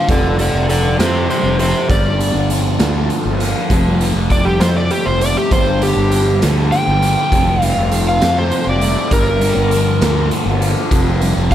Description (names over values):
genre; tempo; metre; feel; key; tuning
psychedelic rock; 66 BPM (dotted quarters); 6/8; straight; G minor; A4 = 440 Hz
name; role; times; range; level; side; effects
overdriven slide guitar; melody; 0.0-11.5 s; G4 to G5; -18 LUFS; equal; tape echo
fuzz guitar; riff; 0.0-11.5 s; F2 to Bb3; -19 LUFS; left 1 dB; distortion, phaser, tape echo
tanpura; drone; 0.0-11.5 s; G2 to G3; -27 LUFS; equal; none
fuzz fingered electric bass; bass; 0.1-11.5 s; F1 to F2; -18 LUFS; equal; overdrive
raw garage drum kit; drums; 0.1-11.5 s; hi-hat, kick drum, snare drum; -20 LUFS; equal; none
room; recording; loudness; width
light reverb, small room ambience; echo-heavy mix; -13 LUFS; side -11 dB against mid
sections
0.0-11.5 A section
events
electric slide guitar solo 0.0-11.5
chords
0.1 F; 1.9 Gm7; 3.7 F; 5.5 Gm7; 7.3 F; 9.1 Gm7; 10.9 F5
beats
| 0.09 0.99 | 1.90 2.80 | 3.71 4.61 | 5.51 6.42 | 7.32 8.22 | 9.12 10.02 | 10.91